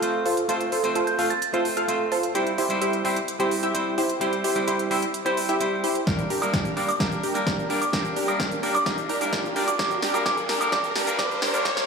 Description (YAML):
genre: EDM, festival progressive house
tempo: 129 BPM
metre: 4/4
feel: straight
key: unclear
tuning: A4 = 439 Hz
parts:
  - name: semi-hollow electric guitar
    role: accompaniment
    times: 0.0-11.9 s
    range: G3 to C5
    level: -28 LUFS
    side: equal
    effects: sidechain pumping, digital delay
  - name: supersaw stab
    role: riff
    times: 0.0-11.8 s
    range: D4 to F5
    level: -25 LUFS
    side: right 1 dB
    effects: sidechain pumping, low-pass filter, digital delay
  - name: big-room dance drum kit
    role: drums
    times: 0.0-11.9 s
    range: hi-hat, shaker, snare drum, woodblock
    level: -30 LUFS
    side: right 1 dB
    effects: none
  - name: glassy synth bell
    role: melody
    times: 1.1-1.8, 6.9-11.7 s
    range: D6 to A6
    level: -30 LUFS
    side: right 2 dB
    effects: chorus, digital delay
  - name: electronic kick drum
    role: drums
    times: 6.1-11.7 s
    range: none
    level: -29 LUFS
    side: equal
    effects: overdrive
  - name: riser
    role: sound effects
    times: 7.9-11.9 s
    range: none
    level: -31 LUFS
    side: equal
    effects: none
room: moderate huge ambient reverb, RT60 4.5 s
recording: played on a big sound system in a bare room, large studio reverb, high-pass filter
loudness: -22 LUFS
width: side -5 dB against mid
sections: 0.0-11.9 A section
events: build-up 0.0-11.9; filter sweep on supersaw synth 0.0-11.9; drum fill 6.1-11.9; riser 7.9-11.9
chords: 0.0 F; 2.4 C; 6.1 Gm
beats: 0.03 | 0.49 0.95 1.42 1.89 | 2.35 2.81 3.28 3.75 | 4.21 4.68 5.14 5.61 | 6.07 6.54 7.00 7.47 | 7.93 8.40 8.86 9.33 | 9.79 10.26 10.72 11.19 | 11.65